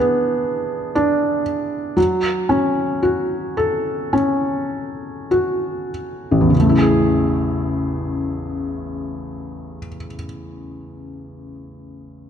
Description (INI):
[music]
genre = pop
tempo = 48-62 BPM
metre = 4/4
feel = straight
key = A major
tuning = A4 = 439 Hz
[part]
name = felt-muted upright piano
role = accompaniment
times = 0.0-12.3 s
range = A1 to A4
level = -18 LUFS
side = equal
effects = none
[sound]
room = moderate concert hall reverb, RT60 2.5 s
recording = dark, warm production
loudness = -17 LUFS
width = side -8 dB against mid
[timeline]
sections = 0.0-6.5 A section; 6.5-11.5 B section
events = slowing down 0.0-6.5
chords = 0.0 E7; 2.0 F#m; 6.5 Amaj7